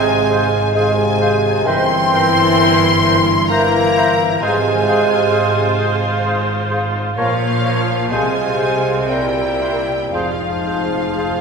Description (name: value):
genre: classical, slow romantic movement for symphony orchestra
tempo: 65 BPM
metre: 3/4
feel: rubato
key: F minor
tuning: A4 = 442 Hz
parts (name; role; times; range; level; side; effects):
- clear studio violin section; melody; 0.0-11.4 s; F5 to C6; -23 LUFS; left 5 dB; none
- clear studio violin section; second line; 0.0-11.4 s; F5 to C6; -24 LUFS; left 3 dB; none
- warm oboe; second line; 0.0-11.3 s; C5 to Db5; -26 LUFS; equal; none
- mellow bassoon; accompaniment; 0.0-11.4 s; F3 to C4; -19 LUFS; right 2 dB; none
- rich studio viola section; accompaniment; 0.0-11.4 s; E4 to Db5; -23 LUFS; right 2 dB; none
- dark French horn section; sustained chords; 0.0-11.4 s; Ab2 to E3; -21 LUFS; left 1 dB; none
- rich studio cello section; bass; 0.0-11.4 s; F2 to C3; -24 LUFS; right 1 dB; none
- rich studio double bass section; bass; 0.0-11.4 s; F1 to C2; -26 LUFS; right 1 dB; none
- clear clarinet; second line; 0.3-11.3 s; Ab4 to Bb4; -28 LUFS; equal; none
- mellow hollow flute section; second line; 0.3-11.3 s; E5 to F5; -28 LUFS; left 2 dB; none
- timpani; percussion; 10.1-11.4 s; F2; -36 LUFS; left 1 dB; none
room: wet concert hall reverb, RT60 1.8 s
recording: heard from further back in the room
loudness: -13 LUFS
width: side -5 dB against mid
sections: 0.0-11.4 A section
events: timpani fill 10.1-11.4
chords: 0.0 Fm/Ab; 1.7 C7/G; 4.4 Fm/Ab; 7.2 Bbm; 8.1 Fm/C; 9.1 C7; 10.1 Fm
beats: 0.75 | 1.66 2.58 3.50 | 4.42 5.33 6.25 | 7.18 8.11 9.08 | 10.13 11.17